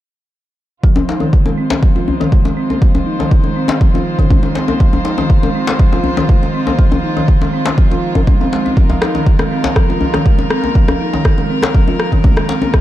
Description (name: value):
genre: afro house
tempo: 121 BPM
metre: 4/4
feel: straight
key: F minor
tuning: A4 = 440 Hz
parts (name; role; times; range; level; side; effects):
- warm chamber string section; sustained chords; 0.8-12.8 s; Eb3 to C5; -22 LUFS; equal; vintage 12-bit sampler grit, sidechain pumping, low-pass filter
- folk marimba with soft mallets; arpeggios; 0.8-12.8 s; Eb3 to F4; -18 LUFS; right 1 dB; sidechain pumping, low-pass filter, ping-pong delay
- electronic kick drum; drums; 0.8-12.8 s; none; -12 LUFS; equal; studio ambience
- djembe; percussion; 1.0-12.7 s; none; -19 LUFS; left 3 dB; none
- electronic rim click; drums; 9.0-12.8 s; none; -20 LUFS; left 1 dB; low-pass filter on snare, studio ambience
room: small room reverb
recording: dark, warm production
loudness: -11 LUFS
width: side -14 dB against mid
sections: 0.8-12.8 A section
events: filter sweep on string section 0.8-12.8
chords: 0.8 Fm7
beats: | 0.84 1.33 1.83 2.33 | 2.82 3.32 3.81 4.31 | 4.80 5.30 5.80 6.29 | 6.79 7.28 7.78 8.28 | 8.77 9.27 9.76 10.26 | 10.76 11.25 11.75 12.24 | 12.74